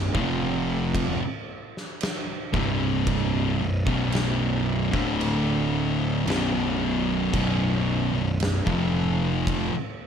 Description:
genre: stoner and doom metal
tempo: 56 BPM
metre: 4/4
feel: straight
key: unclear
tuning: A4 = 440 Hz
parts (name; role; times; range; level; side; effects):
- overdriven semi-hollow guitar; riff; 0.0-9.7 s; B1 to F3; -30 LUFS; equal; none
- thick fuzz guitar; riff; 0.0-9.7 s; B1 to F3; -28 LUFS; left 10 dB; distortion
- thick fuzz guitar; riff; 0.0-9.7 s; B1 to F3; -27 LUFS; right 6 dB; distortion
- fuzz picked electric bass; bass; 0.0-9.7 s; B0 to F1; -30 LUFS; equal; overdrive, tube saturation
- oversized low-tuned drum kit; drums; 0.1-9.7 s; crash cymbal, kick drum, snare drum; -30 LUFS; equal; none
room: little or no reverb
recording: none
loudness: -22 LUFS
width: side -8 dB against mid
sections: 0.0-10.1 A section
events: none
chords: 0.1 F5; 2.5 C5; 3.6 B5; 4.9 D5; 6.3 B5; 8.7 F5

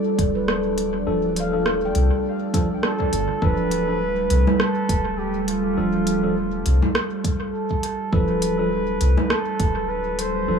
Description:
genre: ambient dub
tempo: 102 BPM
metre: 4/4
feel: swing 57% on 16ths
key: D dorian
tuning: A4 = 438 Hz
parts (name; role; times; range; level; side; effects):
- deep dark ambient pad; sustained chords; 0.0-10.6 s; G3 to A4; -25 LUFS; equal; chorus, built-in reverb
- handpan; arpeggios; 0.0-4.5 s; C4 to G5; -35 LUFS; right 1 dB; dub echo
- bubbling stepped-filter texture; texture; 0.0-3.4 s; D5; -39 LUFS; left 5 dB; chorus, built-in reverb
- warm sub bass; bass; 0.2-10.6 s; D1 to C2; -24 LUFS; equal; none
- electronic kick drum; drums; 0.2-9.7 s; none; -22 LUFS; equal; none
- organic electronic drum kit; drums; 0.2-10.3 s; congas, hi-hat, rim click; -25 LUFS; right 1 dB; dub echo
- tine electric piano; stabs; 1.1-10.6 s; F3 to A4; -28 LUFS; left 1 dB; dub echo
- trumpet with bucket mute; melody; 2.8-10.6 s; F4 to C5; -26 LUFS; right 2 dB; dub echo
room: moderate spring reverb, RT60 2.6 s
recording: small room ambience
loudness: -19 LUFS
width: side -6 dB against mid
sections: 0.0-3.4 A section; 3.4-10.6 A section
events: filter sweep on handpan 0.0-3.4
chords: 0.0 Dm

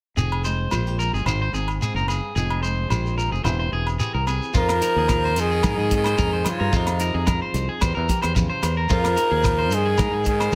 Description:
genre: highlife guitar band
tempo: 110 BPM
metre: 4/4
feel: swing 54% on 16ths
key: F minor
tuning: A4 = 439 Hz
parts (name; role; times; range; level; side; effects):
- nylon-string guitar; accompaniment; 0.2-10.6 s; F2 to Ab4; -35 LUFS; equal; none
- electric guitar at the edge of break-up; arpeggios; 0.2-10.5 s; F4 to C5; -30 LUFS; equal; tape echo
- fingered electric bass; bass; 0.2-10.5 s; E1 to Ab2; -27 LUFS; equal; none
- shekere; percussion; 0.2-10.6 s; none; -32 LUFS; equal; none
- agogo bells; percussion; 0.3-10.5 s; none; -34 LUFS; equal; none
- tight funk drum kit; drums; 4.5-10.5 s; hi-hat, kick drum, rim click; -28 LUFS; equal; none
- congas; percussion; 4.5-10.6 s; none; -32 LUFS; equal; none
- dark trumpet; melody; 4.6-10.6 s; Eb4 to Bb4; -25 LUFS; equal; none
- raspy tenor saxophone; second line; 4.6-10.6 s; C3 to F3; -32 LUFS; equal; none
room: light reverb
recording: none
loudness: -22 LUFS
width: mono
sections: 0.2-4.5 A section; 4.5-10.6 B section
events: none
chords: 0.2 Fm; 1.3 Ab; 2.4 Fm7; 3.5 C/E; 4.5 Fm7; 5.6 Abadd9; 6.7 Fm7; 7.8 C/E; 8.9 Fm7; 10.0 Abadd9

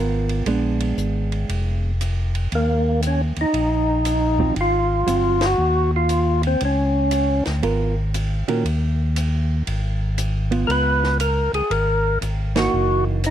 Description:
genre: soul jazz organ trio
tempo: 117 BPM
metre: 4/4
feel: swing 66% on 8ths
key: Db mixolydian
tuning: A4 = 439 Hz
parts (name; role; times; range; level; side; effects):
- hollow-body jazz guitar; accompaniment; 0.0-13.2 s; Eb3 to Bb4; -24 LUFS; right 5 dB; none
- tonewheel organ; bass; 0.0-13.3 s; F1 to Bb2; -21 LUFS; equal; overdrive, slow rotary speaker
- compact cocktail drum kit; drums; 0.3-13.3 s; hi-hat, kick drum, ride cymbal, snare drum; -31 LUFS; right 1 dB; none
- percussive tonewheel organ; melody; 2.6-7.4, 10.7-13.3 s; Bb3 to Cb5; -20 LUFS; equal; slow rotary speaker, overdrive
room: light reverb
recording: dark, warm production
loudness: -18 LUFS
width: side -10 dB against mid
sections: 0.0-10.7 A section; 10.7-13.3 A section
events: band accent 5.3, 12.5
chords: 0.5 Bb7b9; 2.5 Eb5; 4.6 Ab6; 6.6 Db13; 8.7 N.C.; 9.7 Abm6; 10.7 Db13; 12.7 Gb6

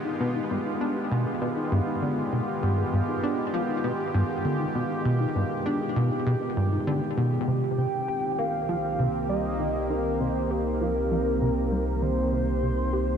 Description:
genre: ambient, sequencer-driven space music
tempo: 99 BPM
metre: 4/4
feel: straight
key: C minor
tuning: A4 = 440 Hz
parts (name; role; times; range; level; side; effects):
- sweeping resonant pad; sustained chords; 0.0-13.2 s; Eb3 to G4; -28 LUFS; right 1 dB; chorus
- soft round pluck; arpeggios; 0.0-7.4 s; B3 to Ab4; -34 LUFS; left 3 dB; chorus, auto-pan, ping-pong delay
- plucky analog bass; riff; 0.2-13.1 s; G2 to G4; -28 LUFS; equal; wide subtle chorus, ping-pong delay
- round analog bass; bass; 7.5-13.2 s; C2; -31 LUFS; equal; none
- pulse-width lead; melody; 7.8-13.2 s; Bb4 to G5; -30 LUFS; equal; chorus, vintage 12-bit sampler grit, ping-pong delay
room: wet huge ambient reverb, RT60 7.7 s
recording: in a vast, echoing space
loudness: -24 LUFS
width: side -7 dB against mid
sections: 0.0-7.5 A section; 7.5-13.2 B section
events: filter sweep on analog synth bass 7.5-13.2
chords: 0.0 G7b9b13; 7.5 Cm7

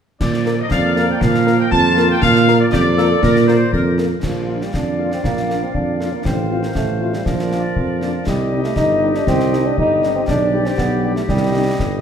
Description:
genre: military-style march for wind band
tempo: 119 BPM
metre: 2/4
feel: straight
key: Bb major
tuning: A4 = 440 Hz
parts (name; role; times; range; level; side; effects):
- dark trumpet section; melody; 0.2-11.6 s; D5 to A5; -20 LUFS; left 2 dB; none
- bright trombone section; sustained chords; 0.2-3.9 s; F3 to Bb3; -24 LUFS; right 6 dB; none
- mellow tuba; bass; 0.2-12.0 s; G1 to Bb2; -18 LUFS; right 2 dB; none
- concert snare drum, clash cymbals and concert bass drum; drums; 0.2-12.0 s; none; -24 LUFS; left 1 dB; none
- mellow French horn section; accompaniment; 0.5-11.6 s; G3 to Bb4; -26 LUFS; left 4 dB; none
- clear woodwind section; second line; 0.7-12.0 s; F4 to F5; -25 LUFS; left 2 dB; none
- clear euphonium; second line; 4.2-12.0 s; F3 to Eb4; -20 LUFS; right 1 dB; none
room: moderate scoring stage reverb, RT60 1.8 s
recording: minimal, uncompressed stereo recording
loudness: -14 LUFS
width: side -8 dB against mid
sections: 0.2-4.2 A section; 4.2-12.0 B section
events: none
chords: 0.2 Bb; 6.3 F/A; 7.3 Bb; 8.3 Cm; 10.3 G/B; 11.3 Cm

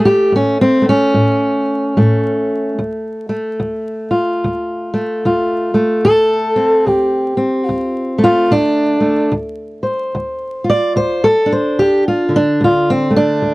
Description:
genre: acoustic country blues, solo or duo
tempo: 73 BPM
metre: 4/4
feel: swing 60% on 8ths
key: D minor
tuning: A4 = 440 Hz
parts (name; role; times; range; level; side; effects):
- fingerpicked steel-string acoustic guitar; solo; 0.0-13.5 s; D2 to D5; -13 LUFS; equal; none
room: light reverb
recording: dry, close 1970s-style studio recording, vinyl crackle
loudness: -13 LUFS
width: side -20 dB against mid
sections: 0.0-9.3 A section; 9.3-13.5 A section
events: steel-string acoustic guitar solo 0.0-13.5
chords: 0.0 N.C.; 2.8 Dm7

